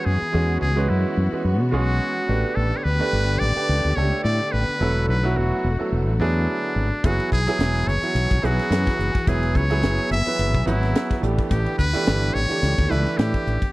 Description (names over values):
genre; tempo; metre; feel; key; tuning
electric jazz fusion; 107 BPM; 4/4; swing 55% on 16ths; unclear; A4 = 440 Hz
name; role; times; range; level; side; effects
trumpet with metal mute; melody; 0.0-13.7 s; D4 to E5; -25 LUFS; equal; none
bright concert grand piano; accompaniment; 0.0-13.6 s; E3 to B4; -26 LUFS; right 3 dB; none
clear studio string section; sustained chords; 0.0-13.7 s; D3 to G#4; -32 LUFS; left 2 dB; none
mellow fretless electric bass; bass; 0.1-13.7 s; E1 to B2; -22 LUFS; equal; none
tight funk drum kit; drums; 7.0-13.7 s; hi-hat, kick drum, ride cymbal, snare drum; -23 LUFS; equal; none
room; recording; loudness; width
little or no reverb; dry, close 1970s-style studio recording; -19 LUFS; side -19 dB against mid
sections
0.0-13.7 A section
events
none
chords
0.0 F#9sus4; 2.3 A9sus4; 4.8 E9sus4; 7.0 F#9sus4; 11.2 A9sus4